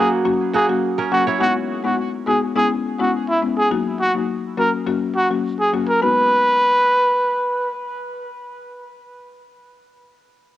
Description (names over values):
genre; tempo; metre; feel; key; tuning
afrobeats; 104 BPM; 4/4; straight; G# minor; A4 = 441 Hz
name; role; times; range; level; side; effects
breathy trumpet; melody; 0.0-7.7 s; E4 to B4; -18 LUFS; right 1 dB; cassette tape, tape echo
buzzing marimba with medium mallets; accompaniment; 0.0-9.8 s; F#3 to F#4; -22 LUFS; left 6 dB; none
kora; riff; 0.0-2.8 s; A#3 to C#5; -22 LUFS; right 6 dB; tape echo
room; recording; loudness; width
light reverb, small room ambience; home recording on cassette; -16 LUFS; side -13 dB against mid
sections
0.0-6.0 A section; 6.0-8.3 B section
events
none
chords
0.0 F#; 1.4 G#m7; 2.6 C#m7; 3.7 D#m; 4.6 F#; 6.0 G#m7